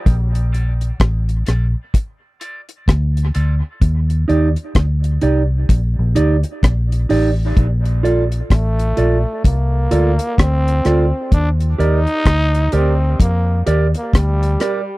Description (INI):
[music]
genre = dub reggae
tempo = 64 BPM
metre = 4/4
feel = swing 61% on 16ths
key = Bb major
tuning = A4 = 441 Hz
[part]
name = vintage muted fingered electric bass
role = bass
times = 0.1-14.6 s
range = A1 to F2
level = -16 LUFS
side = equal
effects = none
[part]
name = deep reggae drum kit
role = drums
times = 0.1-14.9 s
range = hi-hat, kick drum, rim click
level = -15 LUFS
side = equal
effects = none
[part]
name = mellow electric guitar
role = accompaniment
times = 0.5-14.8 s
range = Eb4 to D5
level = -21 LUFS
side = right 3 dB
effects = high-pass filter, dub echo
[part]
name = growling trombone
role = melody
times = 8.5-14.9 s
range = G3 to Eb4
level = -22 LUFS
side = equal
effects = dub echo
[sound]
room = little or no reverb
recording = dry, close 1970s-style studio recording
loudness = -14 LUFS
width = side -20 dB against mid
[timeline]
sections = 0.0-15.0 A section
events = break 0.1-7.6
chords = 0.1 Bbmaj7; 3.8 Ebmaj7; 7.6 Bbmaj7; 11.3 Ebmaj7